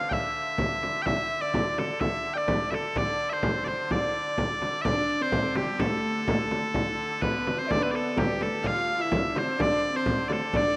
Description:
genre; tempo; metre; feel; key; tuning
medieval dance; 127 BPM; 2/4; straight; D dorian; A4 = 442 Hz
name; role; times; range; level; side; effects
loud bright bagpipes; melody; 0.0-10.8 s; G4 to G5; -31 LUFS; equal; none
concert harp; second line; 0.0-10.8 s; G4 to F5; -37 LUFS; equal; none
clear hurdy-gurdy; drone; 0.0-10.8 s; D3; -41 LUFS; equal; none
frame drum; percussion; 0.1-10.8 s; none; -32 LUFS; equal; none
rich viola da gamba; second line; 4.9-10.8 s; G3 to F4; -35 LUFS; equal; analog delay
room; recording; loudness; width
moderate lush hall reverb, RT60 2.7 s; rough home demo mix, vinyl crackle; -27 LUFS; mono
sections
0.0-4.9 A section; 4.9-10.8 A section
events
none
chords
none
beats
| 0.11 0.59 | 1.06 1.54 | 2.01 2.49 | 2.96 3.44 | 3.91 4.38 | 4.86 5.33 | 5.81 6.28 | 6.75 7.23 | 7.70 8.17 | 8.64 9.12 | 9.59 10.06 | 10.54

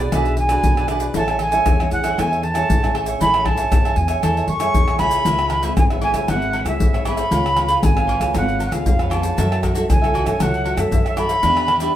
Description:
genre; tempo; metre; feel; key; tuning
samba and choro; 117 BPM; 4/4; straight; A major; A4 = 440 Hz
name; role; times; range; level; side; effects
jazz flute; melody; 0.0-12.0 s; D5 to C#6; -21 LUFS; right 1 dB; none
cavaquinho; accompaniment; 0.0-11.9 s; D4 to G#5; -25 LUFS; right 3 dB; none
nylon-string guitar; accompaniment; 0.0-12.0 s; G#2 to A4; -27 LUFS; left 2 dB; none
upright bass; bass; 0.0-11.9 s; G#1 to F#2; -23 LUFS; equal; none
egg shaker, surdo, pandeiro, tamborim and agogo bells; percussion; 0.1-11.9 s; none; -20 LUFS; left 1 dB; none
room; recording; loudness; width
wet studio reverb, RT60 0.6 s; band playing live in one room; -16 LUFS; side -12 dB against mid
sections
0.0-5.3 A section; 5.3-12.0 B section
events
flute solo 0.0-5.3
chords
0.0 E9; 1.2 Amaj7; 5.3 C#m7; 7.3 C#7; 9.4 F#m7; 11.4 Em7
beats
0.13 0.64 | 1.15 1.67 2.18 2.69 | 3.21 3.72 4.23 4.75 | 5.26 5.77 6.29 6.80 | 7.31 7.83 8.34 8.86 | 9.37 9.89 10.40 10.92 | 11.43 11.95

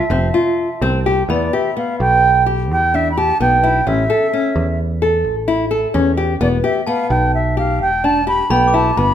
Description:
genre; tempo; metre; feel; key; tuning
contemporary instrumental, chamber music in an uneven meter; 257 BPM (eighths); 11/8; straight; E phrygian; A4 = 437 Hz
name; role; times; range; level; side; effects
bright reedy baroque flute; melody; 0.0-9.1 s; D5 to B5; -17 LUFS; right 2 dB; none
nylon-string guitar; arpeggios; 0.0-9.1 s; B3 to A4; -18 LUFS; left 3 dB; none
picked electric bass; bass; 0.1-9.1 s; E1 to E2; -20 LUFS; right 1 dB; none
glockenspiel with brass mallets; texture; 1.3-2.1, 6.9-9.1 s; A5 to D6; -28 LUFS; left 5 dB; none
room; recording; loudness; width
moderate recital hall reverb, RT60 1.3 s; minimal, uncompressed stereo recording; -14 LUFS; side -10 dB against mid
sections
0.0-1.3 A section; 1.3-9.1 B section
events
none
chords
0.0 Fmaj7(no3); 1.3 Em; 3.9 A; 6.4 Em7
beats
0.10 0.34 0.57 0.81 1.05 | 1.29 1.53 1.76 2.00 2.23 2.47 2.70 2.94 3.17 3.40 3.64 | 3.87 4.10 4.33 4.56 4.79 5.02 5.25 5.48 5.71 5.95 6.18 | 6.41 6.64 6.88 7.11 7.34 7.57 7.81 8.04 8.27 8.51 8.74 | 8.97

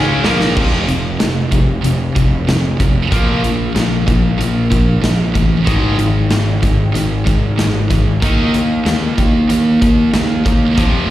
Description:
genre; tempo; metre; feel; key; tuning
hard rock; 94 BPM; 4/4; straight; unclear; A4 = 440 Hz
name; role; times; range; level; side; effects
cranked stack guitar; riff; 0.0-11.1 s; F2 to Eb4; -20 LUFS; left 6 dB; overdrive, slapback echo
distorted electric guitar; riff; 0.0-0.6 s; Bb2 to Db4; -21 LUFS; equal; overdrive, slapback echo
heavy high-gain guitar; riff; 0.0-11.1 s; F2 to Eb4; -20 LUFS; right 7 dB; distortion, slapback echo
fuzz picked electric bass; bass; 0.0-11.1 s; F1 to Eb2; -16 LUFS; equal; overdrive
big rock drum kit; drums; 0.2-10.9 s; crash cymbal, hi-hat, kick drum, snare drum; -17 LUFS; equal; none
room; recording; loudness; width
little or no reverb; live gig heard through the venue's PA, recital hall reverb; -12 LUFS; side -14 dB against mid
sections
0.6-11.1 A section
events
drum fill 0.0-0.6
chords
0.0 Bb5; 0.6 F5; 3.1 Bb5; 5.7 Ab5; 8.2 Eb5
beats
| 0.56 1.20 1.83 2.47 | 3.11 3.75 4.39 5.03 | 5.67 6.30 6.94 7.58 | 8.22 8.86 9.50 10.14 | 10.78

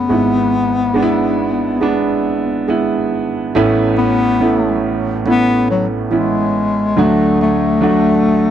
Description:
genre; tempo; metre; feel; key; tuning
pop; 70 BPM; 4/4; straight; A major; A4 = 440 Hz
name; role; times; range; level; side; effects
warm bass clarinet; melody; 0.0-8.5 s; F#3 to B3; -16 LUFS; left 4 dB; slapback echo
warm concert grand piano; accompaniment; 0.0-8.5 s; G#1 to F#4; -15 LUFS; right 3 dB; none
room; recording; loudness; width
light reverb, studio reverb; dry, close 1970s-style studio recording; -13 LUFS; side -10 dB against mid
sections
0.0-3.6 A section; 3.6-8.5 B section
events
none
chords
0.1 E/G#; 3.6 Aadd9; 7.0 D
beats
| 0.11 0.96 1.82 2.69 | 3.55 4.41 5.27 6.12 | 6.98 7.83

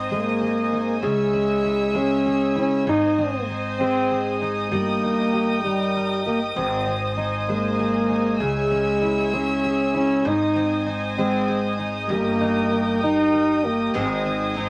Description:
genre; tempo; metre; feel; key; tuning
six-eight pop ballad; 65 BPM (dotted quarters); 6/8; straight; Ab major; A4 = 435 Hz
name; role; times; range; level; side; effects
fingerpicked steel-string acoustic guitar; accompaniment; 0.0-14.7 s; Ab2 to Bb4; -29 LUFS; equal; none
clear studio string section; sustained chords; 0.0-14.7 s; Bb4 to Fb6; -30 LUFS; equal; none
upright bass; bass; 0.0-14.7 s; G1 to Db2; -37 LUFS; equal; none
trombone with bucket mute; melody; 0.1-14.6 s; G3 to Eb4; -24 LUFS; equal; none
picked steel-string acoustic guitar; arpeggios; 13.9-14.7 s; Ab2 to Ab4; -29 LUFS; equal; none
room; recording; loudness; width
moderate studio reverb, RT60 0.5 s; vinyl crackle; -22 LUFS; mono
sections
0.0-14.7 A section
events
none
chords
0.0 Ab; 1.0 Dbm; 2.9 Ab; 4.7 Eb/G; 6.6 Ab; 8.4 Dbm; 10.2 Ab; 12.1 Eb/G; 13.9 Ab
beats
0.10 | 1.02 1.95 | 2.87 3.79 | 4.71 5.63 | 6.56 7.48 | 8.40 9.32 | 10.25 11.17 | 12.09 13.02 | 13.94

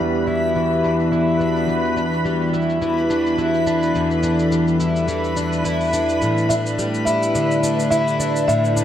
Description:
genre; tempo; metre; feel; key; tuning
folktronica; 106 BPM; 4/4; swing 56% on 16ths; E minor; A4 = 440 Hz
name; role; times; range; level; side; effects
warbly tape-like pad; sustained chords; 0.0-8.8 s; E3 to D5; -24 LUFS; left 1 dB; chorus, built-in reverb
fingerpicked plugged-in twelve-string acoustic guitar; arpeggios; 0.0-8.8 s; E2 to E4; -19 LUFS; equal; vintage 12-bit sampler grit, low-pass filter, tape echo
backwards swelling texture; texture; 0.0-8.8 s; B4 to B5; -27 LUFS; equal; built-in reverb
cabasa; drums; 0.1-8.8 s; none; -33 LUFS; left 1 dB; low-pass filter on hats, low-pass filter on perc, low-pass filter on snare, low-pass filter on room
buzzing marimba with soft mallets; second line; 6.5-8.7 s; E5; -23 LUFS; left 1 dB; vintage 12-bit sampler grit, ping-pong delay
room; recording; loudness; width
moderate echo chamber reverb, RT60 1.4 s; vinyl crackle; -17 LUFS; side -10 dB against mid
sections
0.0-8.8 A section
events
filter sweep on twelve-string acoustic guitar 0.0-8.8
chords
0.0 Em7; 6.2 A7sus4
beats
0.55 1.12 | 1.69 2.25 2.82 3.38 | 3.95 4.51 5.08 5.65 | 6.21 6.78 7.35 7.91 | 8.48

